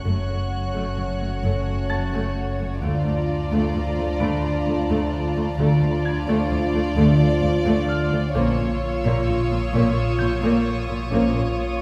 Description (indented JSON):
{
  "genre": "cinematic, suspense film score",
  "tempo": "65 BPM",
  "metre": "3/4",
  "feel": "straight",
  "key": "unclear",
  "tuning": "A4 = 440 Hz",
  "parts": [
    { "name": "warm chamber violin section", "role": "melody", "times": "0.0-11.8 s", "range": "C#5 to D5", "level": "-33 LUFS", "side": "equal", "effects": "none" },
    { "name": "warm chamber violin section", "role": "second line", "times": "0.0-11.8 s", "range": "F4 to F#4", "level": "-31 LUFS", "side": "equal", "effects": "none" },
    { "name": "warm chamber viola section", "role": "accompaniment", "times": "0.0-11.4 s", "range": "A3 to A#3", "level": "-30 LUFS", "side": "equal", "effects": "none" },
    { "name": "marimba with soft mallets", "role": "riff", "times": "0.0-11.8 s", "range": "F#2 to D4", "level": "-29 LUFS", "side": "equal", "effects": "none" },
    { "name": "dark chamber cello section", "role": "bass", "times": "0.0-11.4 s", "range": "D2 to A#2", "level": "-30 LUFS", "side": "equal", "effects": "none" },
    { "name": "dark chamber double bass section", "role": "bass", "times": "0.0-11.2 s", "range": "F#1 to D2", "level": "-30 LUFS", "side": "equal", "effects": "none" },
    { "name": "bright baby grand piano", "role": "texture", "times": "0.0-11.8 s", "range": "A5 to D7", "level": "-39 LUFS", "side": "equal", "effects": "none" },
    { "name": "warm chamber violin section", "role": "texture", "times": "0.0-11.8 s", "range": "A5 to F#6", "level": "-39 LUFS", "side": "equal", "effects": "none" },
    { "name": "dark French horn section", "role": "sustained chords", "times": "0.1-11.5 s", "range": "F3 to D4", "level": "-33 LUFS", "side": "equal", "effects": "none" },
    { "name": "warm sub bass", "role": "drone", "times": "0.1-11.8 s", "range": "F#1 to D2", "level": "-32 LUFS", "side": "equal", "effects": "none" }
  ],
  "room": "wet recital hall reverb, RT60 1.6 s",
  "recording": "heard from further back in the room",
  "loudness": "-22 LUFS",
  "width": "mono",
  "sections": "0.0-11.8 A section",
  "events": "none",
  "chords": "0.0 F#m; 2.8 Dm; 8.4 A#m"
}